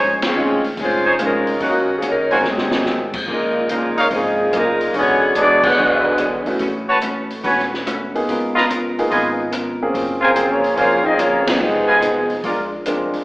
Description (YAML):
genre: jazz, big band swing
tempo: 144 BPM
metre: 4/4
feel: swing 68% on 8ths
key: Bb minor, Db major from 3.3 s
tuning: A4 = 442 Hz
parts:
  - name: vintage hollow-body jazz guitar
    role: accompaniment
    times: 0.0-13.2 s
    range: Gb2 to C#5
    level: -26 LUFS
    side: left 1 dB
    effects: none
  - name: mellow trumpet section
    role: stabs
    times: 0.0-12.6 s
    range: Eb4 to Bb5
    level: -18 LUFS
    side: equal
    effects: none
  - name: upright bass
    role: bass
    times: 0.0-13.2 s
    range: E1 to Eb2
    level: -34 LUFS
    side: equal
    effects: none
  - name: open jazz drum kit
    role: drums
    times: 0.2-13.2 s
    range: crash cymbal, hi-hat, kick drum, ride cymbal, rim click, snare drum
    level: -26 LUFS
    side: equal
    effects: none
  - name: mellow saxophone section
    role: melody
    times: 0.3-6.5, 10.2-12.7 s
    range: Eb3 to F5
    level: -18 LUFS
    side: equal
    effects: none
  - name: warm grand piano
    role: accompaniment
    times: 0.4-2.4, 5.7-13.2 s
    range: Gb3 to C#5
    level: -22 LUFS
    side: equal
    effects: none
  - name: warm trombone section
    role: second line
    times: 2.5-6.5, 10.2-12.7 s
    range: Bb2 to F4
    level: -23 LUFS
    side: right 1 dB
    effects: none
room: wet recital hall reverb, RT60 1.2 s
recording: recorded in a church or concert hall, AM radio sound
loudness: -15 LUFS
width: side -21 dB against mid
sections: 0.0-3.3 A section; 3.3-13.2 B section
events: band accent 0.1, 5.6, 11.4; drum fill 2.4-2.9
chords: 0.0 Bbm11; 1.6 Ebm7; 2.4 Ab9; 3.3 Db69; 4.9 E13; 6.6 A69; 8.3 Db13; 9.9 Gbmaj9#11; 11.6 Fm7b5; 12.4 Bb7